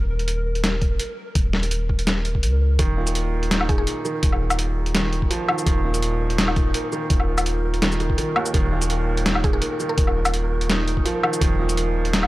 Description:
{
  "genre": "half-time drum and bass",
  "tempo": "167 BPM",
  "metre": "4/4",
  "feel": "swing 53% on 16ths, half-time",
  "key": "unclear",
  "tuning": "A4 = 440 Hz",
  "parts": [
    { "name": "long sustained 808-style bass", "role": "bass", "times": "0.0-12.3 s", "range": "Eb1 to Db2", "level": "-23 LUFS", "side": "equal", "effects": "none" },
    { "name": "pulsing gated texture", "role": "texture", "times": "0.0-12.3 s", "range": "Bb4", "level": "-32 LUFS", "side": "left 1 dB", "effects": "chorus, built-in reverb" },
    { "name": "boom bap sampler-style drum kit", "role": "drums", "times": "0.2-12.3 s", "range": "hi-hat, shaker, snare drum, woodblock", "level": "-24 LUFS", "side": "left 1 dB", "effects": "none" },
    { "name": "electronic kick drum", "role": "drums", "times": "0.8-11.5 s", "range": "none", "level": "-22 LUFS", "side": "equal", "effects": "none" },
    { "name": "felt-muted upright piano", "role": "arpeggios", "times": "2.8-12.3 s", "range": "Eb2 to Eb4", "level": "-25 LUFS", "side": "right 3 dB", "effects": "tape echo" },
    { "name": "mallet-like synth pluck", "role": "melody", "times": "3.7-3.8, 9.4-10.4 s", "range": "Ab4 to Bb4", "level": "-32 LUFS", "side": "equal", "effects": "chorus, analog delay" }
  ],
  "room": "little or no reverb",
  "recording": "dry, gritty hardware recording, transformer saturation",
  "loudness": "-19 LUFS",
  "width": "side -18 dB against mid",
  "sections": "0.0-12.3 A section",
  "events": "none",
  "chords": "0.0 Eb5"
}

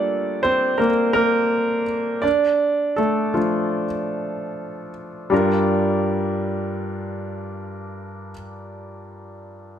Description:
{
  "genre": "pop",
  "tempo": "73-86 BPM",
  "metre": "4/4",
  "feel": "straight",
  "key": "G minor",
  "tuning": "A4 = 436 Hz",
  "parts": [
    { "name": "clear concert grand piano", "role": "accompaniment", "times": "0.0-9.8 s", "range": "G2 to D5", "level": "-20 LUFS", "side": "equal", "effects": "none" }
  ],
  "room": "wet studio reverb, RT60 0.9 s",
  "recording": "none",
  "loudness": "-19 LUFS",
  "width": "side -9 dB against mid",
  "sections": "0.0-5.3 A section; 5.3-8.6 B section",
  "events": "slowing down 0.0-5.3; grand piano solo 0.0-5.3",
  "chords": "0.0 Gm7; 2.2 Dm; 5.3 Gm7"
}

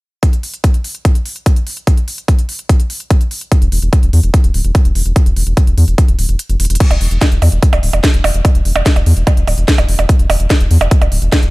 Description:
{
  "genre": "psychedelic trance",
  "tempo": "146 BPM",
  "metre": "4/4",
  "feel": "straight",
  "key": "unclear",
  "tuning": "A4 = 440 Hz",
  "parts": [
    { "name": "electronic kick drum", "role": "drums", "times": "0.2-11.4 s", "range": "none", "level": "-10 LUFS", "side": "equal", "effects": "studio ambience" },
    { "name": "techno drum kit", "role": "drums", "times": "0.2-11.5 s", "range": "crash cymbal, hi-hat, percussion blips, snare drum", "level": "-19 LUFS", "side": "right 2 dB", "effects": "overdrive, studio ambience" },
    { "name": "round analog bass", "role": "bass", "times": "3.6-11.5 s", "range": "D1 to E2", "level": "-12 LUFS", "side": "equal", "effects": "tube saturation" }
  ],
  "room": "little or no reverb",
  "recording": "none",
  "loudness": "-10 LUFS",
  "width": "side -22 dB against mid",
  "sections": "0.2-6.8 A section; 6.8-11.5 B section",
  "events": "break 6.4-6.8; drum fill 6.6",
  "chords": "none"
}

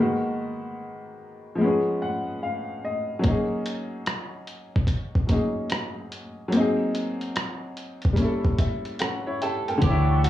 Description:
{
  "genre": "lo-fi hip hop",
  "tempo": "73 BPM",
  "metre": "4/4",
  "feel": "swing 64% on 16ths",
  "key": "unclear",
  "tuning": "A4 = 440 Hz",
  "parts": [
    { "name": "warm upright piano", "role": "accompaniment", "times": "0.0-10.3 s", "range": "D3 to G5", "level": "-26 LUFS", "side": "left 1 dB", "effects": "cassette tape" },
    { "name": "dusty soul sampler-style drum kit", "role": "drums", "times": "3.2-10.3 s", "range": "hi-hat, kick drum, rim click", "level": "-25 LUFS", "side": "equal", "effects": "none" },
    { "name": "electric guitar through a small old amp", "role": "melody", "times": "9.4-10.3 s", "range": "F#4 to A4", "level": "-27 LUFS", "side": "right 3 dB", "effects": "none" },
    { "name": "lush unison pad", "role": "sustained chords", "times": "9.8-10.3 s", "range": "E5 to C#6", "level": "-34 LUFS", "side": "right 2 dB", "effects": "chorus" },
    { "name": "hollow-body short-scale fingered electric bass", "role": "bass", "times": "9.8-10.3 s", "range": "D2", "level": "-21 LUFS", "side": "equal", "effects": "none" }
  ],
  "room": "moderate small room reverb, RT60 0.6 s",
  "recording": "cassette tape, small room reverb",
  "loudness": "-23 LUFS",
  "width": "side -13 dB against mid",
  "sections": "0.0-9.8 A section",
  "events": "upright piano fill 1.6-3.2, 8.2-9.8",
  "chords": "0.0 G#m9; 1.6 C#7; 3.2 F#69; 6.5 G#9; 8.2 A7b9"
}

